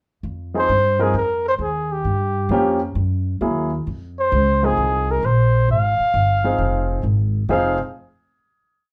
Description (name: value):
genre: jazz, small-group swing and bop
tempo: 132 BPM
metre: 4/4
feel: swing 67% on 8ths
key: F minor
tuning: A4 = 441 Hz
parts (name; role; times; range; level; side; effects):
- upright bass; bass; 0.2-7.8 s; F1 to G2; -23 LUFS; equal; none
- warm grand piano; accompaniment; 0.5-7.8 s; F3 to Bb4; -24 LUFS; equal; none
- trumpet with bucket mute; melody; 0.6-7.8 s; G4 to F5; -22 LUFS; equal; none
room: wet studio reverb, RT60 0.5 s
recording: band playing live in one room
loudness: -19 LUFS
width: mono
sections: 0.2-7.5 A section; 7.5-8.9 final chord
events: none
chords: 0.2 Fm7; 2.1 Gm7b5; 3.0 Gb9; 3.9 Fm7